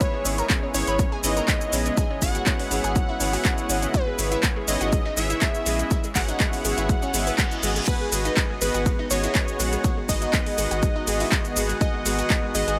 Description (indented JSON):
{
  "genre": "progressive house",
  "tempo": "122 BPM",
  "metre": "4/4",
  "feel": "straight",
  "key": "unclear",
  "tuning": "A4 = 437 Hz",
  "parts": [
    { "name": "plucky unison lead", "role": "melody", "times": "0.0-12.8 s", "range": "B4 to F#5", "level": "-31 LUFS", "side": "equal", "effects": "tape echo" },
    { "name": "shimmering ambient pad", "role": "sustained chords", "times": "0.0-12.8 s", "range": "C#3 to F#4", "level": "-37 LUFS", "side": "equal", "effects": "chorus, built-in reverb, sidechain pumping" },
    { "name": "analog pluck", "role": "arpeggios", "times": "0.0-12.8 s", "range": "G#3 to B4", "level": "-34 LUFS", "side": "equal", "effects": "chorus, cassette tape, sidechain pumping, tape echo" },
    { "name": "soft supersaw", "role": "stabs", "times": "0.0-12.7 s", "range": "B3 to G#5", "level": "-33 LUFS", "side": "equal", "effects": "sidechain pumping" },
    { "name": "electronic kick drum", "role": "drums", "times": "0.0-12.4 s", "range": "none", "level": "-26 LUFS", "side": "equal", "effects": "overdrive" },
    { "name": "pop drum kit", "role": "drums", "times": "0.0-12.8 s", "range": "crash cymbal, handclaps, hi-hat, ride cymbal, shaker", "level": "-29 LUFS", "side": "equal", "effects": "overdrive" },
    { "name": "round analog bass", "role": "bass", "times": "0.3-12.8 s", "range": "G#1 to A#1", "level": "-31 LUFS", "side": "equal", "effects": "sidechain pumping" },
    { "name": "reverse cymbal", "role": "sound effects", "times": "7.1-7.9 s", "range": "none", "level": "-35 LUFS", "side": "equal", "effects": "none" },
    { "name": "drifting glass-harmonics texture", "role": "texture", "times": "8.5-12.8 s", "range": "F#5", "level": "-41 LUFS", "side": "equal", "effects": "none" }
  ],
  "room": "little or no reverb",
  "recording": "none",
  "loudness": "-23 LUFS",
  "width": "mono",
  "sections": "0.0-12.8 A section",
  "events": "reverse cymbal 7.1-7.9",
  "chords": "0.0 C#m7/G#; 7.9 G#m7"
}